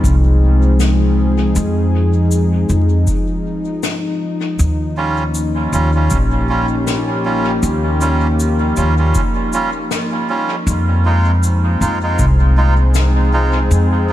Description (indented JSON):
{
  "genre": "ambient dub",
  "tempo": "79 BPM",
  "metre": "4/4",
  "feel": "swing 57% on 16ths",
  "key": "F minor",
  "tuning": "A4 = 438 Hz",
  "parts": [
    { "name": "warm analog pad", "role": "sustained chords", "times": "0.0-14.1 s", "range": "F3 to Ab4", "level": "-19 LUFS", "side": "left 1 dB", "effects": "chorus" },
    { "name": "upright bass", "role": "bass", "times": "0.0-14.1 s", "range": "Bb1 to F2", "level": "-14 LUFS", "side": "equal", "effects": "none" },
    { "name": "cabasa and snare drum", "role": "drums", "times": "0.0-13.9 s", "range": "none", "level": "-27 LUFS", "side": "left 4 dB", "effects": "dub echo" },
    { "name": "electronic kick drum", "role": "drums", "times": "0.0-12.4 s", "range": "none", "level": "-20 LUFS", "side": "equal", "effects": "none" },
    { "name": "melodica", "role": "stabs", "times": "5.0-14.1 s", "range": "G3 to F4", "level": "-20 LUFS", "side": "right 2 dB", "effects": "dub echo" }
  ],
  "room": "light reverb",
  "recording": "vinyl crackle",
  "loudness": "-13 LUFS",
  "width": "side -13 dB against mid",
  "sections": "0.0-14.1 A section",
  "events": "none",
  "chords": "0.0 Fm7; 4.6 Eb9; 10.7 Fm7"
}